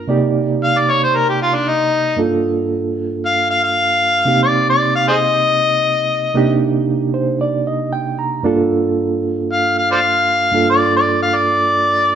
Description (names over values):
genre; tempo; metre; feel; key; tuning
blues; 115 BPM; 4/4; straight; G minor; A4 = 440 Hz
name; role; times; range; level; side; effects
bright reed electric piano; accompaniment; 0.0-12.2 s; G2 to Bb5; -17 LUFS; right 3 dB; fast tremolo
overdriven harmonica; melody; 0.6-12.2 s; D4 to F5; -14 LUFS; left 2 dB; none
room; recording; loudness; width
wet stone room reverb, RT60 1.4 s; band playing live in one room; -14 LUFS; side -8 dB against mid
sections
0.0-12.2 A section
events
harmonica solo 0.0-12.2; reed electric piano fill 6.9-8.4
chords
0.1 Cm9; 2.2 Gm9; 4.3 Cm9; 8.4 Gm9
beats
| 0.09 0.61 1.14 1.66 | 2.18 2.70 3.23 3.75 | 4.27 4.79 5.32 5.84 | 6.36 6.88 7.40 7.92 | 8.45 8.97 9.49 10.01 | 10.53 11.06 11.58 12.10